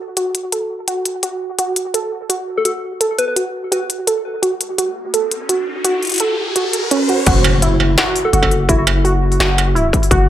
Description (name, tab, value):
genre	half-time drum and bass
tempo	169 BPM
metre	4/4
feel	half-time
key	F# minor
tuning	A4 = 440 Hz
part	warbly dusty pluck	arpeggios	0.0-10.3 s	C#4 to A4	-18 LUFS	right 2 dB	chorus, tape echo
part	industrial drum kit	drums	0.2-10.2 s	crash cymbal, hi-hat, snare drum, struck metal	-18 LUFS	left 1 dB	none
part	soft struck synth lead	melody	2.6-3.3, 8.2-8.8 s	F#4 to B4	-22 LUFS	left 1 dB	chorus, digital delay
part	riser and impact	sound effects	5.1-8.7 s	none	-21 LUFS	equal	none
part	long sustained 808-style bass	bass	7.3-10.3 s	F#1	-16 LUFS	left 1 dB	none
part	electronic kick drum	drums	7.3-10.2 s	none	-16 LUFS	left 1 dB	distortion
room	moderate digital room reverb, RT60 1.2 s, digital ambience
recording	none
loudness	-14 LUFS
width	side -12 dB against mid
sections	0.0-7.3 A section; 7.3-10.3 B section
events	riser 5.1-7.3; drop 7.3-10.3; impact 7.3-8.7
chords	0.0 F#m; 7.3 F#5